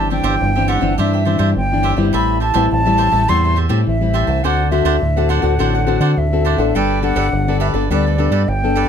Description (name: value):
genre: samba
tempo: 104 BPM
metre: 4/4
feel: straight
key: G major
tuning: A4 = 440 Hz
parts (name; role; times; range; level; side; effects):
- wooden flute; melody; 0.0-8.9 s; D5 to C6; -20 LUFS; right 1 dB; none
- cavaquinho; accompaniment; 0.0-8.9 s; D4 to A5; -23 LUFS; right 6 dB; none
- nylon-string guitar; accompaniment; 0.0-8.9 s; G2 to A4; -19 LUFS; left 6 dB; none
- fingered electric bass with an envelope filter; bass; 0.0-8.8 s; G1 to D3; -18 LUFS; right 1 dB; none
room: moderate studio ambience, RT60 0.5 s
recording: none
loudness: -13 LUFS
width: side -8 dB against mid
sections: 0.0-8.9 A section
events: none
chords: 0.0 Cadd9/G; 2.1 Am7; 4.4 D7; 6.8 Gadd9